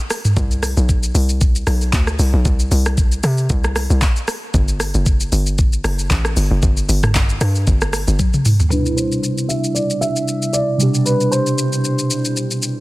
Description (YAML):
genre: amapiano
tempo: 115 BPM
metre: 4/4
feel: swing 55% on 16ths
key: C lydian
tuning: A4 = 440 Hz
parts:
  - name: afro-pop drum kit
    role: drums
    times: 0.1-12.8 s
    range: handclaps, hi-hat, kick drum, rim click, shaker, toms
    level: -18 LUFS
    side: equal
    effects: none
  - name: tight log drum bass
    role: bass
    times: 0.4-8.2 s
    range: F#1 to C3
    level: -17 LUFS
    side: equal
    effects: none
  - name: warm grand piano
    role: melody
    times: 8.7-12.3 s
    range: B4 to E5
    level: -22 LUFS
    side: equal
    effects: low-pass filter, tape echo
  - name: glassy digital keys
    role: accompaniment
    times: 8.7-12.8 s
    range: B2 to G4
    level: -18 LUFS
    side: right 1 dB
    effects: chorus, low-pass filter
room: digital ambience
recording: dense, heavily limited modern master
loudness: -15 LUFS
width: side -20 dB against mid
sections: 0.0-8.7 A section; 8.7-12.8 B section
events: drop 0.0-8.7; drum fill 8.2-8.7; filter sweep 8.7-12.8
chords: 0.4 N.C.; 8.7 Cmaj9